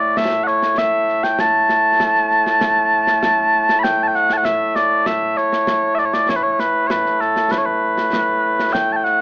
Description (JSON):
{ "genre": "scottish traditional, Scottish pipe music", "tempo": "98 BPM", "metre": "4/4", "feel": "straight", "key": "A mixolydian", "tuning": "A4 = 440 Hz", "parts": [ { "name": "mellow small bagpipes", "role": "melody", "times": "0.0-9.2 s", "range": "A2 to B5", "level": "-14 LUFS", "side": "equal", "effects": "none" }, { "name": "concert snare drum and concert bass drum", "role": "drums", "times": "0.2-9.1 s", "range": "none", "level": "-27 LUFS", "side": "equal", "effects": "none" } ], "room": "small room ambience", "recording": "rough home demo mix, AM radio sound", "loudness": "-14 LUFS", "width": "side -26 dB against mid", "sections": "0.0-3.8 A section; 3.8-9.2 A section", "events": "none", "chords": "none", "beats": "0.17 0.78 | 1.39 2.00 2.62 3.23 | 3.84 4.45 5.07 5.68 | 6.29 6.90 7.51 8.13 | 8.74" }